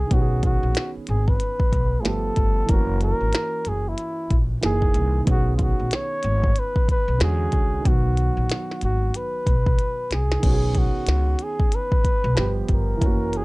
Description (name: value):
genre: hip hop, jazz-hop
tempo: 93 BPM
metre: 4/4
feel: swing 62% on 16ths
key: B major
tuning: A4 = 440 Hz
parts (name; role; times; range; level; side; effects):
- breathy flugelhorn; melody; 0.0-13.4 s; E4 to C#5; -27 LUFS; equal; none
- dark baby grand piano; accompaniment; 0.0-13.4 s; D3 to B4; -30 LUFS; right 4 dB; none
- upright bass; bass; 0.0-13.4 s; F#1 to E2; -23 LUFS; equal; none
- glitchy drum kit; drums; 0.1-13.4 s; crash cymbal, hi-hat, kick drum, snare drum; -22 LUFS; equal; none
room: little or no reverb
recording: dark, warm production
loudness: -19 LUFS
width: side -23 dB against mid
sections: 0.1-10.4 A section; 10.4-13.4 B section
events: drum fill 9.8-10.4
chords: 0.1 B69; 2.0 G9; 2.7 F#7; 4.6 F#13; 5.3 B69; 7.2 E13; 7.9 B; 10.4 B69; 12.4 G7